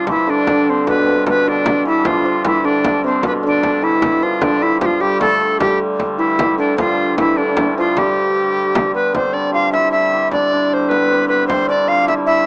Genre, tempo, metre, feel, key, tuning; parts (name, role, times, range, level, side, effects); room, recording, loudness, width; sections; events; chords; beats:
medieval dance; 102 BPM (dotted quarters); 6/8; straight; G mixolydian; A4 = 436 Hz
bright reedy tenor recorder; melody; 0.0-12.5 s; C4 to F5; -15 LUFS; equal
hammered dulcimer; second line; 0.0-12.5 s; B2 to G4; -19 LUFS; equal
rich hurdy-gurdy; drone; 0.0-12.5 s; G2 to D3; -23 LUFS; equal
frame drum; percussion; 0.1-12.3 s; -22 LUFS; equal
moderate studio ambience, RT60 0.5 s; rough home demo mix, small speaker sound; -13 LUFS; side -27 dB against mid
0.0-9.1 A section; 9.1-12.5 B section
0.26 | 0.86 1.45 | 2.05 2.64 | 3.24 3.83 | 4.42 5.02 | 5.61 6.20 | 6.79 7.38 | 7.97 8.56 | 9.15 9.73 | 10.32 10.91 | 11.49 12.08